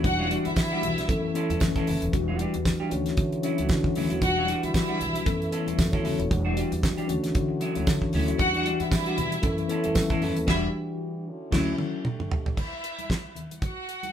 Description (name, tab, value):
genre	disco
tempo	115 BPM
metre	4/4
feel	swing 56% on 16ths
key	E dorian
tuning	A4 = 443 Hz
part	clear studio string section	second line	0.0-14.1 s	E4 to F#5	-29 LUFS	equal	none
part	mellow tine electric piano	accompaniment	0.0-12.1 s	D3 to C#5	-28 LUFS	left 3 dB	slow stereo tremolo
part	semi-hollow electric guitar	accompaniment	0.0-11.7 s	F#3 to A4	-33 LUFS	right 1 dB	none
part	mellow French horn section	sustained chords	0.0-12.6 s	D3 to C#5	-35 LUFS	right 1 dB	none
part	upright bass	bass	0.0-11.7 s	D#1 to F#3	-32 LUFS	right 1 dB	none
part	damped 70s drum kit	drums	0.0-14.1 s	crash cymbal, hi-hat, kick drum, snare drum, toms	-27 LUFS	right 1 dB	none
part	congas	percussion	0.0-14.1 s	none	-38 LUFS	left 4 dB	none
part	tambourine	percussion	0.6-10.1 s	none	-40 LUFS	right 6 dB	none
room	moderate studio reverb, RT60 0.6 s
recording	band playing live in one room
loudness	-24 LUFS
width	side -9 dB against mid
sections	0.0-12.6 A section; 12.6-14.1 B section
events	band accent 10.5-12.6; drum fill 11.5-12.6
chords	0.0 Em9; 1.1 B9sus4; 2.1 Em9; 2.9 Dmaj9; 4.2 Em9; 5.3 B9sus4; 6.3 Em9; 7.1 Dmaj9; 8.4 Em9; 9.4 B9sus4/F#; 10.5 Em9; 11.3 Dmaj9; 12.1 A7sus4; 12.6 N.C.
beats	| 0.04 0.57 1.09 1.61 | 2.13 2.65 3.17 3.70 | 4.22 4.74 5.26 5.79 | 6.31 6.83 7.35 7.87 | 8.39 8.92 9.44 9.96 | 10.48 11.01 11.53 12.05 | 12.58 13.10 13.62